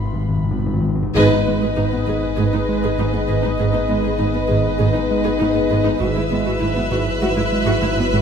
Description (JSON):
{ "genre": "cinematic, suspense film score", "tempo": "99 BPM", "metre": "4/4", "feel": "straight", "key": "G# minor", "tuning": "A4 = 441 Hz", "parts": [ { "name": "punchy sub bass", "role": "drone", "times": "0.0-8.2 s", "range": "G#1", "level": "-28 LUFS", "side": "left 1 dB", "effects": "none" }, { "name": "timpani", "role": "percussion", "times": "0.0-2.0, 6.0-6.9 s", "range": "G#2", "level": "-22 LUFS", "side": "left 2 dB", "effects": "none" }, { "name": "warm chamber violin section", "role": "texture", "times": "0.0-0.8, 6.0-8.2 s", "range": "B5 to F#6", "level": "-31 LUFS", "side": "left 2 dB", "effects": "none" }, { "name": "deep dark ambient pad", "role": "sustained chords", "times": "1.7-8.2 s", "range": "F#4 to E5", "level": "-28 LUFS", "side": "left 1 dB", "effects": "chorus, built-in reverb" }, { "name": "warm chamber violin section", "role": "melody", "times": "1.2-8.2 s", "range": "D#5 to E5", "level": "-25 LUFS", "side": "right 2 dB", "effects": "none" }, { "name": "warm chamber violin section", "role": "second line", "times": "1.2-8.2 s", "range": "B4", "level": "-26 LUFS", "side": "left 1 dB", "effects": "none" }, { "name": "warm chamber viola section", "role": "accompaniment", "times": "1.2-8.2 s", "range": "B3 to G#4", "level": "-26 LUFS", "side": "right 2 dB", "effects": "none" }, { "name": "mellow French horn section", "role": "sustained chords", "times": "1.2-8.2 s", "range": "F#3 to E4", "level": "-24 LUFS", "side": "left 7 dB", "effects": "none" }, { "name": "round analog bass", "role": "riff", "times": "1.2-8.2 s", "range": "G#2 to G#3", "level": "-24 LUFS", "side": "right 4 dB", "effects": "none" }, { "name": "dark chamber double bass section", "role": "bass", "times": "1.2-8.2 s", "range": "G#1", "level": "-27 LUFS", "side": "right 4 dB", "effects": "none" }, { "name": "warm chamber cello section", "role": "bass", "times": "1.2-8.2 s", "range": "G#2", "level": "-25 LUFS", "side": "right 2 dB", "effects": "none" } ], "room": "moderate scoring stage reverb, RT60 1.9 s", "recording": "none", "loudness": "-16 LUFS", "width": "side -7 dB against mid", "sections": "0.0-1.2 A section; 1.2-8.2 B section", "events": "break 0.0-1.2; timpani fill 0.0-1.2; band accent 1.2-1.8", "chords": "0.0 E/G# (rootless); 1.2 G#m; 6.0 Eadd9/G#", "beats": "0.55 | 1.16 1.76 2.37 2.98 | 3.58 4.19 4.79 5.40 | 6.01 6.61 7.22 7.83" }